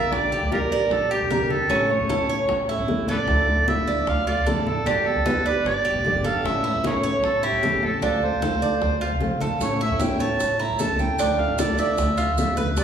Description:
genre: latin, Cuban son and guajira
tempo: 152 BPM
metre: 4/4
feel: straight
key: D harmonic minor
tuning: A4 = 440 Hz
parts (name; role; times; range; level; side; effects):
- overdriven harmonica; melody; 0.0-12.8 s; F4 to Bb5; -24 LUFS; right 1 dB; none
- picked old ladder-braced acoustic guitar; accompaniment; 0.0-12.8 s; B2 to G4; -28 LUFS; left 2 dB; none
- Cuban tres; arpeggios; 0.0-12.8 s; C#4 to D5; -26 LUFS; right 5 dB; none
- upright bass; bass; 0.0-12.8 s; E1 to E2; -28 LUFS; equal; none
- bongos; percussion; 0.1-12.8 s; none; -33 LUFS; left 2 dB; none
- congas; percussion; 0.1-12.8 s; none; -32 LUFS; equal; none
- maracas; percussion; 9.6-12.8 s; none; -37 LUFS; right 4 dB; none
room: wet recital hall reverb, RT60 1.5 s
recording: recorded in a church or concert hall, small room ambience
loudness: -20 LUFS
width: side -8 dB against mid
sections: 0.0-12.8 A section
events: none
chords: 0.1 Gm/Bb; 1.7 A; 3.3 Dmadd9; 4.9 G; 6.4 A; 8.0 Dm7; 9.6 A; 11.2 Dmadd9

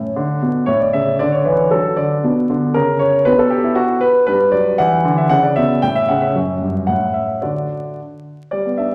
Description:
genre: classical-period piano sonatina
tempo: 116 BPM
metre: 2/4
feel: straight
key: D major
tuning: A4 = 440 Hz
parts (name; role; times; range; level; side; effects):
- warm grand piano; solo; 0.0-8.9 s; F#2 to G5; -16 LUFS; equal; none
room: wet recital hall reverb, RT60 1.4 s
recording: vinyl crackle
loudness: -16 LUFS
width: mono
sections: 0.2-8.5 A section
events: none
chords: 0.2 Bm; 0.7 A; 1.2 D; 2.2 Bm; 2.7 N.C.; 3.3 Bm; 4.3 G; 4.8 Dadd9; 5.3 Bmadd11; 5.8 A; 6.4 N.C.; 7.4 D

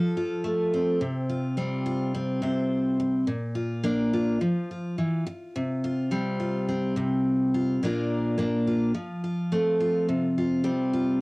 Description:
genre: highlife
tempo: 106 BPM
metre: 4/4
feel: straight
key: unclear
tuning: A4 = 440 Hz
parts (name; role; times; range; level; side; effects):
- picked steel-string acoustic guitar; solo; 0.0-11.2 s; Bb2 to C5; -24 LUFS; equal; none
room: moderate studio reverb, RT60 0.6 s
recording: home recording on cassette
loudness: -24 LUFS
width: side -26 dB against mid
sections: 0.0-1.0 A section; 1.0-11.2 B section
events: none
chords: 0.0 F; 1.0 Csus4; 3.3 Bb; 4.4 Dmadd9 (rootless); 5.5 Csus4; 7.8 Bb; 8.9 F; 10.1 Csus4

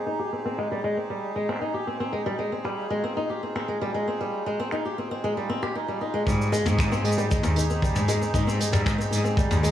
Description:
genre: folktronica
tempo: 116 BPM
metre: 4/4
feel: straight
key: Ab major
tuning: A4 = 440 Hz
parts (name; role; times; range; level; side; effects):
- accordion; sustained chords; 0.0-9.7 s; Eb4 to Ab4; -32 LUFS; right 2 dB; none
- fingerpicked swing-style acoustic guitar; arpeggios; 0.0-9.7 s; G3 to G4; -27 LUFS; left 1 dB; low-pass filter, digital delay
- vintage brush drum kit; drums; 0.6-9.7 s; cabasa, finger snaps, hi-hat, toms; -31 LUFS; left 1 dB; low-pass filter on hats, low-pass filter on toms, low-pass filter on snare, low-pass filter on perc, low-pass filter on room
- clear cello; bass; 6.3-9.6 s; Eb2 to Ab2; -24 LUFS; equal; none
- kick drum; drums; 6.3-9.5 s; none; -26 LUFS; equal; none
room: light reverb, small room reverb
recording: small room ambience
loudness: -24 LUFS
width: side -11 dB against mid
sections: 0.0-6.3 A section; 6.3-9.7 B section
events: none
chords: 0.0 Abmaj7

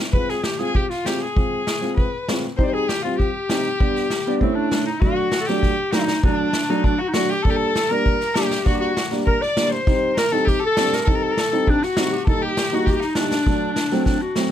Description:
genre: klezmer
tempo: 99 BPM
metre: 2/4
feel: straight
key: D phrygian dominant from 5.0 s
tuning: A4 = 441 Hz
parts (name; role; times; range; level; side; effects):
- warm clarinet; melody; 0.1-14.5 s; C4 to D5; -23 LUFS; left 1 dB; none
- rich violin; second line; 0.1-14.3 s; C4 to D5; -26 LUFS; left 3 dB; none
- dark upright piano; accompaniment; 0.1-14.5 s; F#3 to F4; -24 LUFS; right 1 dB; none
- street-band drum kit; drums; 0.1-14.5 s; kick drum, snare drum; -22 LUFS; equal; none
room: little or no reverb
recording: close, detailed microphones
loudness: -18 LUFS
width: side -10 dB against mid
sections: 0.0-5.0 A section; 5.0-14.5 B section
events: drum fill 14.1-14.5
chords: 0.1 Fm; 2.6 Cm; 3.8 G; 4.4 A; 5.0 D; 7.5 Gm; 9.9 Cm; 12.3 Eb; 13.5 D

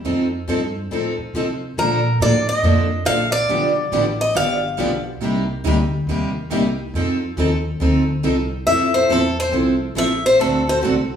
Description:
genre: acoustic string swing (jazz manouche)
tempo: 139 BPM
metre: 4/4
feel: swing 63% on 8ths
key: unclear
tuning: A4 = 441 Hz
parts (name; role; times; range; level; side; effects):
- picked steel-string acoustic guitar; accompaniment; 0.0-10.9 s; C3 to A4; -22 LUFS; right 4 dB; none
- upright bass; bass; 0.0-11.2 s; G1 to C3; -23 LUFS; equal; none
- picked steel-string acoustic guitar; accompaniment; 0.1-10.9 s; C3 to A4; -24 LUFS; left 5 dB; none
- picked swing-style acoustic guitar; melody; 1.8-5.0, 8.7-10.8 s; A4 to F5; -18 LUFS; left 1 dB; none
room: wet large studio reverb, RT60 1.1 s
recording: band playing live in one room, small room ambience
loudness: -17 LUFS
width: side -8 dB against mid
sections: 0.0-8.7 A section; 8.7-11.2 B section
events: steel-string acoustic guitar solo 8.7-11.2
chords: 0.0 F7; 1.8 Bbmaj7; 3.5 G7; 5.2 Cm7; 6.9 F7; 8.7 Fmaj7; 10.4 D7

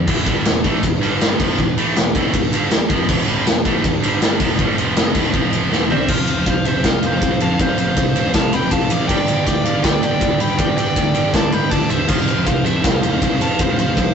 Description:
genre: heavy metal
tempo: 160 BPM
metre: 4/4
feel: straight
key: unclear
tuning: A4 = 441 Hz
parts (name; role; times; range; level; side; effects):
- scooped high-gain guitar; riff; 0.0-14.1 s; E2 to C4; -28 LUFS; left 5 dB; distortion
- scooped high-gain guitar; riff; 0.0-14.1 s; E2 to C4; -22 LUFS; right 3 dB; distortion
- fuzz picked electric bass; bass; 0.1-14.1 s; E1 to G2; -25 LUFS; equal; overdrive
- big rock drum kit; drums; 0.1-14.1 s; crash cymbal, kick drum, ride cymbal, snare drum, toms; -17 LUFS; equal; none
- high-gain lead guitar; melody; 5.9-14.1 s; E5 to B5; -24 LUFS; left 1 dB; distortion
- nasal lead guitar with a parked wah; second line; 5.9-14.1 s; C5 to G5; -24 LUFS; right 1 dB; overdrive, digital delay
room: light reverb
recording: rough rehearsal-room recording, warm saturation, nothing above 8.0 kHz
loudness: -15 LUFS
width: side -7 dB against mid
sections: 0.1-6.1 A section; 6.1-14.1 B section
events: drum fill 5.7-6.1; half time 6.1-14.1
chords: 0.1 Em; 1.0 G5; 1.4 Em; 4.0 G5; 4.4 G7sus4/F; 4.8 F5; 5.1 E5; 5.3 F5; 5.7 Em; 6.1 F5; 9.1 G5; 12.1 F5

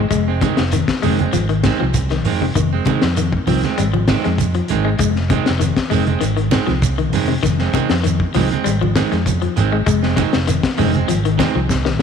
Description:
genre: afrobeat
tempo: 98 BPM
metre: 4/4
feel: straight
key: F minor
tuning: A4 = 443 Hz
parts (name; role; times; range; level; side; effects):
- electric guitar at the edge of break-up; arpeggios; 0.0-12.0 s; C3 to Ab3; -21 LUFS; left 9 dB; none
- fingered electric bass; bass; 0.0-12.0 s; F1 to F2; -20 LUFS; equal; none
- crunchy breakbeat drum kit; drums; 0.1-12.0 s; hi-hat, kick drum, snare drum; -22 LUFS; left 4 dB; none
- shekere; percussion; 0.1-11.9 s; none; -27 LUFS; right 7 dB; none
- electric guitar at the edge of break-up; stabs; 0.3-12.0 s; Eb3 to C4; -22 LUFS; right 11 dB; none
- congas; percussion; 0.4-12.0 s; none; -24 LUFS; right 8 dB; none
room: moderate echo chamber reverb, RT60 2.3 s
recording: 1960s-style stereo with parts hard left and right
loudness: -15 LUFS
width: side -7 dB against mid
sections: 0.0-12.0 A section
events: drum fill 11.7-12.0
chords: 0.0 Fm7

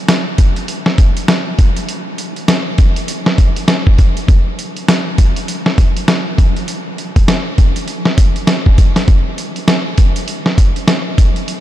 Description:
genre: R&B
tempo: 100 BPM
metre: 4/4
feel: swing 60% on 16ths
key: none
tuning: none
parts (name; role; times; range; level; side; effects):
- dusty soul sampler-style drum kit; drums; 0.1-11.6 s; hi-hat, kick drum, snare drum; -11 LUFS; equal; none
room: light reverb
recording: none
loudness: -11 LUFS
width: side -13 dB against mid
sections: 0.0-11.6 A section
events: none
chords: none

